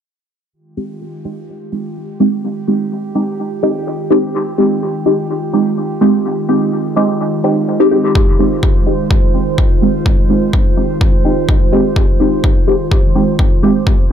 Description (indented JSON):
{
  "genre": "dub techno",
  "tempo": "126 BPM",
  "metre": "4/4",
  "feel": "straight",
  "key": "F minor",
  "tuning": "A4 = 439 Hz",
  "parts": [
    { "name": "warbly tape-like pad", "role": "sustained chords", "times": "0.9-14.1 s", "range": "Eb3 to C5", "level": "-20 LUFS", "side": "right 2 dB", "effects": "chorus, built-in reverb, sidechain pumping" },
    { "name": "deep mellow chord stab", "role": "stabs", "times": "0.8-13.7 s", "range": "Ab3 to G4", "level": "-15 LUFS", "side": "equal", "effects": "chorus, phaser, sidechain pumping, dub echo" },
    { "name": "electronic kick drum", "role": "drums", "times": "8.2-14.0 s", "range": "none", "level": "-13 LUFS", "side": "equal", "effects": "none" }
  ],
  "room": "moderate spring reverb, RT60 2.0 s, digital ambience",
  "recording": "none",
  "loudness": "-11 LUFS",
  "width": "side -9 dB against mid",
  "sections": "0.5-14.1 A section",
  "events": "none",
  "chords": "0.5 Fm9"
}